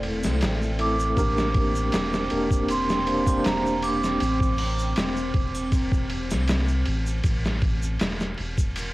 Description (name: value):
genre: trip hop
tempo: 79 BPM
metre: 4/4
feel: straight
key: unclear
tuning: A4 = 439 Hz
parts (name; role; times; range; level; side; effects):
- tine electric piano; accompaniment; 0.0-4.2 s; A3 to C5; -28 LUFS; equal; tremolo, cassette tape, tape echo
- deep dark ambient pad; sustained chords; 0.0-7.3 s; C4; -31 LUFS; equal; chorus, built-in reverb, cassette tape
- soft dub sub bass; bass; 0.0-8.9 s; E1 to C2; -28 LUFS; equal; tube saturation
- trip hop sampler-style drum kit; drums; 0.0-8.9 s; hi-hat, kick drum, ride cymbal, snare drum; -26 LUFS; equal; cassette tape
- triangle and tube shaker; percussion; 0.2-8.9 s; none; -42 LUFS; equal; none
- vibraphone with medium mallets; melody; 0.8-5.7 s; Bb5 to D6; -29 LUFS; right 3 dB; tape echo
room: little or no reverb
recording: home recording on cassette, vinyl crackle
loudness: -22 LUFS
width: side -19 dB against mid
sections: 0.0-8.9 A section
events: none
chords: 0.0 Am; 1.2 Gm; 7.2 A5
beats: 0.41 | 1.17 1.93 2.69 3.45 | 4.21 4.96 5.72 6.48 | 7.24 8.00 8.76